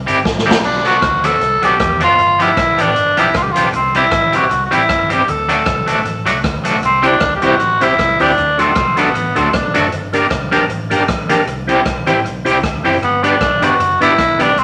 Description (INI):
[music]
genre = ska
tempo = 155 BPM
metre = 4/4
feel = swing 55% on 8ths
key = unclear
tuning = A4 = 440 Hz
[part]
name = mellow fretless electric bass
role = bass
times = 0.0-14.6 s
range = F#1 to E2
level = -28 LUFS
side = equal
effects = none
[part]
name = electric guitar at the edge of break-up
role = accompaniment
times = 0.1-14.5 s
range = F3 to G4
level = -20 LUFS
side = equal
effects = tremolo, tape echo
[part]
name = swinging big-band drum kit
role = drums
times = 0.1-14.6 s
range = crash cymbal, hi-hat, kick drum, rim click, snare drum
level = -23 LUFS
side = equal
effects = tape echo
[part]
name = raspy tenor saxophone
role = melody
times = 0.6-9.8, 13.0-14.6 s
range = B3 to A4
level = -16 LUFS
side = equal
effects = none
[part]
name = percussive tonewheel organ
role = stabs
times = 7.0-14.5 s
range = A3 to C5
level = -21 LUFS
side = equal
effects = overdrive, chorus vibrato, fast rotary speaker
[sound]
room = wet studio reverb, RT60 0.7 s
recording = none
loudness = -14 LUFS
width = mono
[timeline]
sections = 0.0-14.6 A section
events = drum fill 0.3-0.6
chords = 0.0 C; 0.6 Bm; 2.2 G7; 3.7 C; 5.3 D; 6.8 C; 8.4 D; 9.9 Gm; 11.5 C; 13.0 G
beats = 0.25 | 0.64 1.03 1.41 1.80 | 2.19 2.57 2.96 3.35 | 3.73 4.12 4.51 4.89 | 5.28 5.67 6.06 6.44 | 6.83 7.22 7.60 7.99 | 8.38 8.77 9.15 9.54 | 9.93 10.31 10.70 11.09 | 11.47 11.86 12.25 12.64 | 13.02 13.41 13.80 14.18 | 14.57